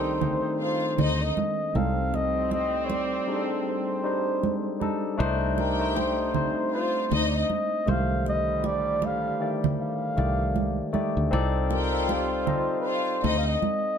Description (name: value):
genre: lush 1970s-style soul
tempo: 78 BPM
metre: 4/4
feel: swing 58% on 16ths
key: C dorian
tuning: A4 = 440 Hz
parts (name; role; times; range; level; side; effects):
- breathy flugelhorn; melody; 0.0-14.0 s; Bb4 to F5; -29 LUFS; right 1 dB; plate reverb
- warm studio string section; second line; 0.0-13.5 s; Eb4 to G5; -31 LUFS; left 4 dB; none
- barky tine electric piano; accompaniment; 0.0-14.0 s; Eb3 to F5; -29 LUFS; left 4 dB; overdrive
- bright trombone section; stabs; 0.0-13.6 s; A2 to F4; -33 LUFS; right 2 dB; none
- fingered electric bass; bass; 0.0-13.6 s; C2 to D2; -28 LUFS; equal; none
- congas; percussion; 0.2-13.8 s; none; -30 LUFS; right 7 dB; none
room: moderate studio reverb, RT60 0.6 s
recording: dark, warm production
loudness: -24 LUFS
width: side -7 dB against mid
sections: 0.0-14.0 A section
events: none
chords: 0.0 Cm69; 7.9 F13/C; 11.3 Cm69